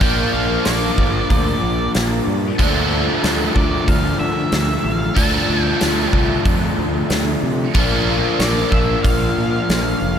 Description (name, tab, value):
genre	rock, shoegaze and dream pop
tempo	93 BPM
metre	4/4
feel	straight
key	D minor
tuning	A4 = 440 Hz
part	octave-fuzz lead guitar	melody	0.0-10.2 s	D5 to A5	-26 LUFS	equal	distortion, tape echo
part	biting overdriven guitar	riff	0.0-10.2 s	Bb2 to D4	-18 LUFS	equal	analog chorus
part	growling fingered electric bass	bass	0.0-10.2 s	F1 to D3	-22 LUFS	equal	overdrive
part	huge arena drum kit	drums	0.0-9.8 s	hi-hat, kick drum, snare drum	-21 LUFS	equal	none
room	moderate cathedral reverb, RT60 5.3 s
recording	dreamy mix soaked in reverb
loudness	-15 LUFS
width	side -8 dB against mid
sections	0.0-10.2 A section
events	none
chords	0.0 Bb; 2.6 Dm; 7.8 Bb